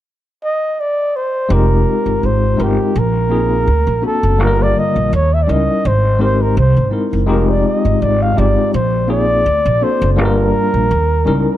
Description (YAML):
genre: R&B, neo-soul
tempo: 83 BPM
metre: 4/4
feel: swing 54% on 16ths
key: F dorian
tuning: A4 = 438 Hz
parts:
  - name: breathy flugelhorn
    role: melody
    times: 0.4-11.6 s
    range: G4 to F5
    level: -17 LUFS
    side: equal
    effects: slapback echo
  - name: overdriven tine electric piano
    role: accompaniment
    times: 1.5-11.6 s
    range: D3 to Bb4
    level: -18 LUFS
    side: left 3 dB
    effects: fast tremolo
  - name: upright bass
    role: bass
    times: 1.5-11.4 s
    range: F1 to Eb2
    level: -15 LUFS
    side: right 1 dB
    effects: none
room: light reverb, small room ambience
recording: none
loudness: -12 LUFS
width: side -13 dB against mid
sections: 0.0-1.5 A section; 1.5-11.6 B section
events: none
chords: 0.0 N.C.; 1.5 Fm9; 2.9 Bb7sus4; 3.7 D7b13; 4.4 Gm7; 5.1 Eb7b9; 5.8 Abmaj9; 6.6 C7alt; 7.3 Fm9; 8.7 Bb7sus4; 9.4 D7b13; 10.2 Gm7; 10.9 Eb7b9